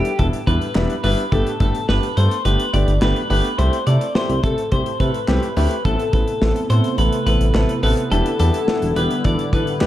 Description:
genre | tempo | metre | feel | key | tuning
synth-pop | 106 BPM | 4/4 | straight | A minor | A4 = 440 Hz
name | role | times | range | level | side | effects
twelve-string electric guitar | melody | 0.0-9.9 s | G4 to D5 | -23 LUFS | left 2 dB | spring reverb, tape echo
warm concert grand piano | accompaniment | 0.0-9.9 s | G3 to B4 | -24 LUFS | equal | none
modern studio drum kit | drums | 0.1-9.9 s | handclaps, hi-hat, kick drum, snare drum | -23 LUFS | equal | none
smooth synth bass | bass | 0.2-9.9 s | E1 to C3 | -18 LUFS | equal | none
sweeping resonant pad | sustained chords | 5.8-9.9 s | C3 to E4 | -25 LUFS | right 1 dB | chorus, phaser
room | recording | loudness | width
light reverb, small room ambience | dark, warm production | -16 LUFS | side -13 dB against mid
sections
0.0-9.9 A section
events
none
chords
0.0 Em7; 1.3 Gadd9; 3.6 C6; 5.8 Amadd9; 8.1 Em7

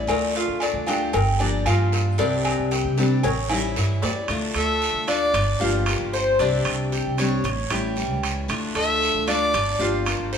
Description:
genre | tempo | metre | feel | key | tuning
latin, Cuban son and guajira | 114 BPM | 4/4 | straight | D minor | A4 = 440 Hz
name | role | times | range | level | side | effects
picked steel-string acoustic guitar | accompaniment | 0.0-10.4 s | C3 to G4 | -27 LUFS | left 4 dB | none
Cuban tres | arpeggios | 0.0-10.4 s | D4 to D5 | -26 LUFS | equal | none
upright bass | bass | 0.0-10.4 s | G1 to C3 | -26 LUFS | right 1 dB | none
agogo bells and timbales | percussion | 0.1-10.3 s | none | -30 LUFS | right 2 dB | none
cowbell | percussion | 0.1-4.3 s | none | -30 LUFS | left 6 dB | none
guiro | percussion | 0.1-10.4 s | none | -33 LUFS | right 5 dB | none
rich fiddle | melody | 4.6-5.6, 8.8-9.8 s | D5 to E5 | -23 LUFS | left 1 dB | none
room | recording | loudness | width
moderate large studio reverb, RT60 1.1 s | band playing live in one room | -20 LUFS | side -7 dB against mid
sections
0.0-4.3 A section; 4.3-10.4 B section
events
drum fill 3.5-4.3; fiddle solo 4.3-10.4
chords
0.1 Dm; 1.1 Gm7; 2.2 Csus2; 3.2 A7; 4.3 Dm; 5.3 Gm7; 6.4 Csus2; 7.4 A7; 8.5 Dm; 9.5 Gm7

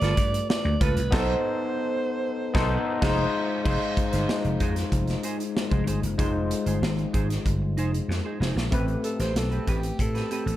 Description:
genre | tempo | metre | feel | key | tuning
polished 1980s jazz-funk pop | 95 BPM | 4/4 | straight | unclear | A4 = 440 Hz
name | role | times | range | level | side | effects
breathy alto saxophone | melody | 0.0-3.3, 9.0-10.6 s | G4 to D5 | -31 LUFS | right 4 dB | none
overdriven tine electric piano | accompaniment | 0.0-10.6 s | Ab3 to C5 | -28 LUFS | left 4 dB | lush chorus
semi-hollow electric guitar | riff | 0.0-10.5 s | C4 to C5 | -35 LUFS | right 4 dB | analog chorus
vintage slap bass | bass | 0.0-10.6 s | F1 to A2 | -27 LUFS | equal | none
modern studio drum kit | drums | 0.0-10.6 s | crash cymbal, hi-hat, kick drum, snare drum | -28 LUFS | equal | none
room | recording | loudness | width
light reverb, small room ambience | dark, warm production | -23 LUFS | side -13 dB against mid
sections
0.0-3.7 A section; 3.7-8.7 B section; 8.7-10.6 C section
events
band accent 1.1-3.7; drum fill 8.1-8.7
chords
0.0 G9; 1.1 B7b9; 3.0 Fm7; 8.7 Am9

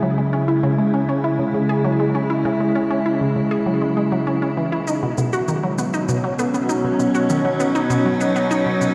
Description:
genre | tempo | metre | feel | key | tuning
ambient, sequencer-driven space music | 99 BPM | 4/4 | straight | C# minor | A4 = 441 Hz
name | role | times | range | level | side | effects
evolving wavetable pad | sustained chords | 0.0-8.9 s | B2 to E4 | -22 LUFS | equal | chorus, built-in reverb
resonant blip pluck | riff | 0.0-8.9 s | B2 to G#4 | -24 LUFS | equal | chorus, analog delay
shaker and bongos | percussion | 4.9-8.9 s | none | -38 LUFS | equal | analog delay
room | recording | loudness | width
wet huge ambient reverb, RT60 8.1 s | played on a big sound system in a bare room, large studio reverb | -20 LUFS | mono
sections
0.0-8.9 A section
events
none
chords
0.0 C#m; 4.9 B

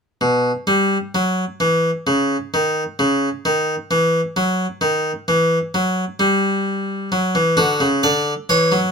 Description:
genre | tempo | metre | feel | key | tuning
classical, baroque-style two-part invention for harpsichord | 65 BPM | 4/4 | straight | unclear | A4 = 440 Hz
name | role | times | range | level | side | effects
harpsichord | solo | 0.2-8.9 s | B2 to D5 | -16 LUFS | equal | none
room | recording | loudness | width
moderate studio reverb, RT60 0.6 s | minimal, uncompressed stereo recording | -16 LUFS | side -5 dB against mid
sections
0.0-8.9 A section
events
none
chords
0.0 N.C.; 7.1 Dmaj9

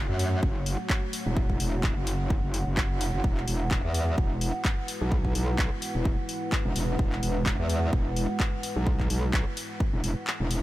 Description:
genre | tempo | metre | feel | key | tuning
bass house | 128 BPM | 4/4 | swing 56% on 16ths | unclear | A4 = 441 Hz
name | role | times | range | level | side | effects
dark analog pad | sustained chords | 0.0-10.6 s | G#3 to F#5 | -34 LUFS | right 1 dB | chorus, sidechain pumping
metallic wobble bass | bass | 0.0-10.6 s | E1 to F#2 | -28 LUFS | equal | chorus, tube saturation, sidechain pumping
house drum kit | drums | 0.2-10.6 s | handclaps, hi-hat | -34 LUFS | left 1 dB | none
electronic kick drum | drums | 0.4-9.9 s | none | -27 LUFS | equal | none
room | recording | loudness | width
light reverb | none | -25 LUFS | side -16 dB against mid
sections
0.0-10.6 A section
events
kick drops out 10.3-10.6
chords
0.0 F#m; 3.2 Eadd9

